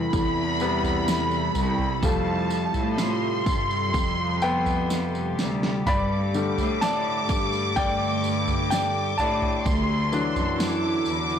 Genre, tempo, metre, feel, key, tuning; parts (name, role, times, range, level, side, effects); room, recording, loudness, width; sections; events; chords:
pop ballad; 63 BPM; 4/4; straight; A4 = 440 Hz
warm studio violin section; second line; 0.0-11.4 s; A5 to D6; -29 LUFS; equal
bright concert grand piano; accompaniment; 0.0-11.4 s; C3 to B5; -28 LUFS; left 2 dB
glassy FM pad; sustained chords; 0.0-11.4 s; C3 to A4; -29 LUFS; right 1 dB; ensemble chorus, built-in reverb
clear studio cello section; bass; 0.0-11.4 s; C2 to A2; -28 LUFS; equal
pop drum kit; drums; 0.1-10.8 s; kick drum, snare drum, toms; -28 LUFS; right 1 dB; overdrive
tambourine; percussion; 0.1-11.4 s; -42 LUFS; right 5 dB
light reverb; blown-out, overdriven recording, overdrive; -22 LUFS; side -8 dB against mid
0.0-11.4 A section
grand piano solo 0.0-11.4; drum fill 4.9-5.9
0.0 Am7/E; 2.0 Fadd9; 5.9 Gsus2; 9.7 Dadd9